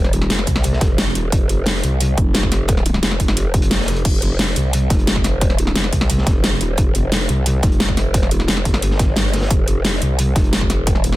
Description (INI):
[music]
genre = dark technical drum and bass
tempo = 176 BPM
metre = 4/4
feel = straight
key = unclear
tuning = A4 = 440 Hz
[part]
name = growl bass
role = bass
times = 0.0-11.2 s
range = Eb1 to C2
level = -19 LUFS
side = equal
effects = chorus, overdrive
[part]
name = dubstep drum kit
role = drums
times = 0.0-11.2 s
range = crash cymbal, hi-hat, snare drum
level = -20 LUFS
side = equal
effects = none
[part]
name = crunchy breakbeat drum kit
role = drums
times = 0.1-11.1 s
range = hi-hat, snare drum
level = -30 LUFS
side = left 1 dB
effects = none
[part]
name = electronic kick drum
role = drums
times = 0.5-10.9 s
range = none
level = -18 LUFS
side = equal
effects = none
[sound]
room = small room ambience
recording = dense, heavily limited modern master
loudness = -15 LUFS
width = side -17 dB against mid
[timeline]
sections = 0.0-11.2 A section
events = none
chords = none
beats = 0.30 0.64 0.98 | 1.32 1.67 2.01 2.35 | 2.69 3.03 3.37 3.71 | 4.05 4.39 4.73 5.07 | 5.42 5.76 6.10 6.44 | 6.78 7.12 7.46 7.80 | 8.14 8.48 8.82 9.16 | 9.51 9.85 10.19 10.53 | 10.87